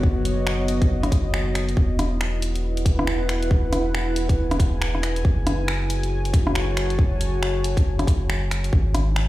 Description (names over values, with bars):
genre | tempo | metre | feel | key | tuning
future garage | 138 BPM | 4/4 | swing 60% on 16ths | F# dorian | A4 = 440 Hz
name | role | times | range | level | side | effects
dark analog pad | sustained chords | 0.0-9.3 s | G#3 to A5 | -27 LUFS | equal | chorus, sidechain pumping
soft dub sub bass | bass | 0.0-9.3 s | E1 to G#1 | -24 LUFS | equal | sidechain pumping
electronic kick drum | drums | 0.0-8.8 s | none | -18 LUFS | equal | small room ambience
garage drum kit | drums | 0.3-9.3 s | finger snaps, hi-hat, rim click | -28 LUFS | equal | small room ambience
room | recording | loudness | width
light reverb, digital ambience | played on a big sound system in a bare room, large studio reverb | -20 LUFS | side -16 dB against mid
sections
0.0-9.3 A section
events
none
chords
0.0 Badd9/F#; 1.8 Emaj7; 5.3 F#m7; 8.7 G#7(no3)